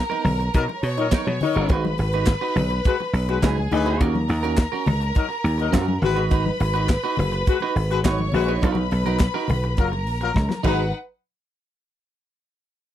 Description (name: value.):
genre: disco.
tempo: 104 BPM.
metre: 4/4.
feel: straight.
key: G# minor.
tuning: A4 = 444 Hz.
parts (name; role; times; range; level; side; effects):
rich studio violin section; second line; 0.0-10.9 s; D#4 to C#6; -28 LUFS; left 1 dB; none.
dry thumbed slap bass; bass; 0.0-10.9 s; F#1 to B2; -23 LUFS; equal; none.
clean electric guitar; accompaniment; 0.1-10.8 s; B3 to B4; -28 LUFS; right 9 dB; none.
congas; percussion; 0.1-10.9 s; none; -29 LUFS; left 4 dB; none.
tight funk drum kit; drums; 0.3-10.8 s; crash cymbal, handclaps, hi-hat, kick drum, snare drum; -20 LUFS; equal; none.
warm horn section; stabs; 0.5-10.8 s; F#3 to B4; -23 LUFS; left 8 dB; none.
room: little or no reverb.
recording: dry, close 1970s-style studio recording.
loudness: -19 LUFS.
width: side -11 dB against mid.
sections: 0.0-10.9 A section; 10.9-12.9 B section.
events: drum fill 10.4-10.9.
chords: 0.0 Bmaj7; 1.7 G#m7; 4.0 D#m7; 6.0 G#m7; 8.6 Bmaj7; 9.8 F#maj7; 10.6 G#m7; 10.9 N.C..